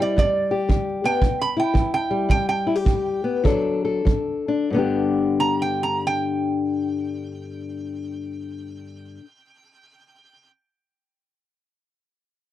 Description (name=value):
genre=acoustic country blues, solo or duo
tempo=89-117 BPM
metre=4/4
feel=swing 66% on 8ths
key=G major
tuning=A4 = 440 Hz
part: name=lap resonator guitar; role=melody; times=0.0-10.5 s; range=D5 to B5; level=-24 LUFS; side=right 4 dB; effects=none
part: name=fingerpicked old ladder-braced acoustic guitar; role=accompaniment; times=0.0-9.3 s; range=G2 to A4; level=-23 LUFS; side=left 4 dB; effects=none
part: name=kick drum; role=drums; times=0.2-4.3 s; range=none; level=-21 LUFS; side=right 1 dB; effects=none
room=little or no reverb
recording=none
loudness=-20 LUFS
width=side -12 dB against mid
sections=0.0-4.7 A section; 4.7-10.1 B section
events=slowing down 0.2-4.7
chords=0.2 G; 1.2 C; 2.3 G; 3.4 D; 4.7 G